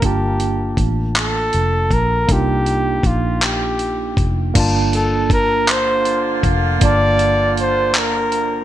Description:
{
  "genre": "slow six-eight R&B",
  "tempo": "53 BPM (dotted quarters)",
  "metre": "6/8",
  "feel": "straight",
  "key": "G minor from 4.5 s",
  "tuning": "A4 = 440 Hz",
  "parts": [
    { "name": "breathy flugelhorn", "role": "melody", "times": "0.0-8.6 s", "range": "F4 to D5", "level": "-19 LUFS", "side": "equal", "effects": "none" },
    { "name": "barky tine electric piano", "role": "accompaniment", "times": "0.0-8.6 s", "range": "Bb3 to A5", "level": "-22 LUFS", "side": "right 3 dB", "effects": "overdrive, medium stereo tremolo" },
    { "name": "vintage muted fingered electric bass", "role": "bass", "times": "0.0-8.6 s", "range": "F1 to C2", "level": "-20 LUFS", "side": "equal", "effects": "none" },
    { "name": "dusty soul sampler-style drum kit", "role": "drums", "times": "0.0-8.5 s", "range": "crash cymbal, handclaps, hi-hat, kick drum", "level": "-19 LUFS", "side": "equal", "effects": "gated reverb" },
    { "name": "warm horn section", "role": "stabs", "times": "5.7-8.6 s", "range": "D3 to F4", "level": "-23 LUFS", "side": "equal", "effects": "none" }
  ],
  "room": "light reverb, digital ambience",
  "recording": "bright 1980s-style digital production",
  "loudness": "-14 LUFS",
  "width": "side -12 dB against mid",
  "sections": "0.0-4.5 A section; 4.5-8.6 B section",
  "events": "none",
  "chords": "0.0 Gm9; 2.3 Cm11; 4.5 Gm9",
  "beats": "| 0.02 1.15 | 2.29 3.42 | 4.55 5.68 | 6.81 7.95"
}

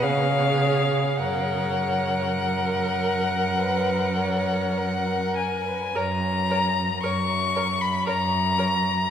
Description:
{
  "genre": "classical, slow romantic movement for string quartet",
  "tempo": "48-59 BPM",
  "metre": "4/4",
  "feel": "rubato",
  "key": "F# major",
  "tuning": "A4 = 442 Hz",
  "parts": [
    { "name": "rich violin", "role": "melody", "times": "0.0-9.1 s", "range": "E#5 to C#6", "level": "-25 LUFS", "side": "left 4 dB", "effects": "none" },
    { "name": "dark violin", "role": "second line", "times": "0.0-8.7 s", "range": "A#4 to C#5", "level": "-30 LUFS", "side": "equal", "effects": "none" },
    { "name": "warm viola", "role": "accompaniment", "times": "0.0-8.7 s", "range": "G#4 to A#4", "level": "-30 LUFS", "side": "right 3 dB", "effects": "none" },
    { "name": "rich cello", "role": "bass", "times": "0.0-9.0 s", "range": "F#2 to C#3", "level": "-26 LUFS", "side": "right 2 dB", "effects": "none" }
  ],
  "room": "wet cathedral reverb, RT60 6.1 s",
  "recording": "recorded in a church or concert hall",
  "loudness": "-21 LUFS",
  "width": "side -8 dB against mid",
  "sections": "0.0-6.0 A section; 6.0-9.1 B section",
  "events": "none",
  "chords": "0.0 C#; 1.2 F#",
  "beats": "0.02 | 1.19 2.40 3.58 4.77 | 5.95 7.03 8.07"
}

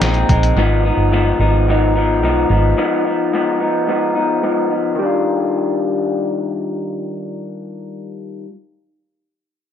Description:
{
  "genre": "indie pop, bedroom pop",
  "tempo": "109 BPM",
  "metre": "4/4",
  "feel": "straight",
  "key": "Eb major",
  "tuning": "A4 = 439 Hz",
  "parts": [
    { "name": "electric guitar through a small old amp", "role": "accompaniment", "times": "0.0-8.6 s", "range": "Ab2 to F4", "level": "-16 LUFS", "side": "left 2 dB", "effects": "wide subtle chorus, warbly pitch drift, low-pass filter" },
    { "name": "vintage muted fingered electric bass", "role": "bass", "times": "0.0-2.7 s", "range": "G1 to Cb2", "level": "-16 LUFS", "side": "right 1 dB", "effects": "none" },
    { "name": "lo-fi sampler-style drum kit", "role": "drums", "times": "0.0-0.6 s", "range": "hi-hat, kick drum, snare drum", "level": "-18 LUFS", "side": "equal", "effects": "analog delay" }
  ],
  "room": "moderate spring reverb, RT60 1.3 s",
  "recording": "echo-heavy mix",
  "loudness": "-14 LUFS",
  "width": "side -9 dB against mid",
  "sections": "0.0-5.0 A section; 5.0-7.2 B section",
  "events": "filter sweep on clean electric guitar 0.0-5.0",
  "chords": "0.0 Bb9sus4; 0.6 Abm6; 5.0 Ebmaj9",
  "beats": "0.02 | 0.57 1.12 1.67 2.22 | 2.77 3.33 3.88 4.43 | 4.98 5.53 6.08 6.63"
}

